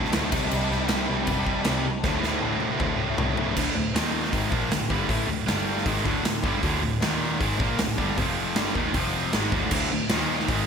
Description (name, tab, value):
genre	heavy metal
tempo	156 BPM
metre	4/4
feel	straight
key	D minor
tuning	A4 = 440 Hz
part	distorted electric guitar	riff	0.0-10.7 s	D2 to Bb3	-30 LUFS	left 9 dB	overdrive
part	heavy high-gain guitar	riff	0.0-10.7 s	D2 to Bb3	-29 LUFS	right 10 dB	distortion
part	sludgy distorted guitar	riff	0.0-10.7 s	D2 to C4	-31 LUFS	equal	overdrive
part	warm double bass	bass	0.0-10.7 s	F1 to Eb2	-31 LUFS	equal	none
part	big rock drum kit	drums	0.1-10.6 s	crash cymbal, hi-hat, kick drum, snare drum, toms	-27 LUFS	equal	none
room	moderate plate reverb, RT60 1.5 s, small room reverb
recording	bright 1980s-style digital production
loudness	-22 LUFS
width	side -6 dB against mid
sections	0.0-3.6 A section; 3.6-9.7 B section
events	drum fill 2.0-3.6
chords	0.3 C5; 2.0 D5; 3.9 Eb5; 4.3 Dm; 5.5 G5; 5.9 D5; 7.0 Eb5; 7.4 Dm; 8.2 F5; 8.6 Ebmaj7; 8.9 F5; 9.3 D5; 10.1 Eb5